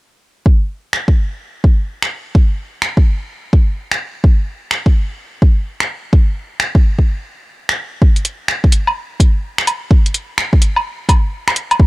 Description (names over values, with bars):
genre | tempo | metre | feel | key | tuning
future garage | 127 BPM | 4/4 | swing 63% on 16ths | none | none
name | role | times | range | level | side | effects
electronic kick drum | drums | 0.5-11.9 s | none | -10 LUFS | equal | overdrive
garage drum kit | drums | 0.9-11.8 s | finger snaps, hi-hat, woodblock | -17 LUFS | equal | none
room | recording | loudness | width
little or no reverb | none | -13 LUFS | side -20 dB against mid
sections
0.5-8.0 A section; 8.0-11.9 B section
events
break 7.1-8.0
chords
none